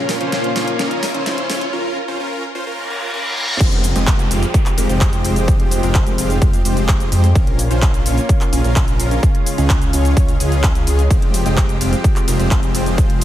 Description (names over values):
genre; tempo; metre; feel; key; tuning
EDM, festival progressive house; 128 BPM; 4/4; straight; F minor; A4 = 441 Hz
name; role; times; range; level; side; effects
lush unison pad; sustained chords; 0.0-13.2 s; Bb2 to G4; -23 LUFS; equal; chorus, sidechain pumping
dense compressed supersaw; riff; 0.0-13.2 s; Ab3 to F5; -22 LUFS; equal; sidechain pumping, ping-pong delay
riser, reverse cymbal and downlifter; sound effects; 0.0-7.4 s; none; -26 LUFS; equal; none
pop drum kit; drums; 0.1-13.2 s; cabasa, crash cymbal, handclaps, hi-hat, ride cymbal, snare drum; -24 LUFS; equal; overdrive
wide detuned saw bass; bass; 3.6-13.2 s; F1 to F2; -18 LUFS; equal; chorus, sidechain pumping
electronic kick drum; drums; 3.6-13.1 s; none; -15 LUFS; equal; overdrive
room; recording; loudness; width
light reverb; high-pass filter; -14 LUFS; side -12 dB against mid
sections
0.0-3.6 A section; 3.6-13.2 B section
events
build-up 0.0-3.6; drum fill 0.0-1.7; riser 0.0-1.7; filter sweep on supersaw synth 0.0-3.6; filter sweep 0.0-3.6; break 1.7-3.6; reverse cymbal 2.8-3.6; drop 3.6-13.2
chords
0.0 Bbm; 1.7 Db; 3.6 Fmadd9; 7.4 Bbm; 9.2 Db; 11.1 Fmadd9